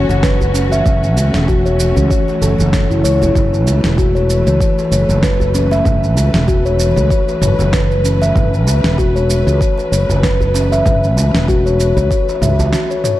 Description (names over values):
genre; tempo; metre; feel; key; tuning
organic downtempo; 96 BPM; 4/4; swing 56% on 16ths; F# minor; A4 = 440 Hz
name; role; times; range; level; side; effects
dark symphonic string section; sustained chords; 0.0-13.2 s; E3 to B4; -22 LUFS; equal; sidechain pumping
steel tongue drum; arpeggios; 0.0-13.1 s; C#4 to E5; -17 LUFS; left 2 dB; tape echo
fretless electric bass; bass; 0.0-12.7 s; E1 to C#2; -15 LUFS; equal; sidechain pumping
deep house drum kit; drums; 0.1-13.2 s; shaker, snare drum, toms; -21 LUFS; right 1 dB; none
djembe; percussion; 0.1-12.7 s; none; -25 LUFS; right 1 dB; none
electronic kick drum; drums; 0.2-12.2 s; none; -16 LUFS; equal; none
room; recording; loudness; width
light reverb, digital ambience; dark, warm production; -11 LUFS; side -15 dB against mid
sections
0.0-13.2 A section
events
none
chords
0.0 F#m7